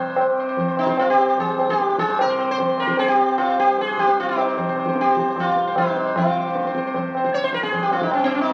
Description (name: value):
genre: indian classical, Hindustani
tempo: 151 BPM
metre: 4/4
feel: straight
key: C raga bhairavi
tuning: A4 = 440 Hz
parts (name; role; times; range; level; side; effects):
- sitar; melody; 0.0-8.5 s; C4 to Db5; -23 LUFS; equal; none
- tanpura; drone; 0.0-8.5 s; C2 to C3; -30 LUFS; equal; none
- tabla; percussion; 0.2-8.5 s; none; -25 LUFS; equal; none
room: wet large studio reverb, RT60 0.9 s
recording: very old 78 rpm record, vinyl crackle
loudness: -20 LUFS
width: mono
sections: 0.0-8.5 A section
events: speeding up 0.0-8.5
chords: none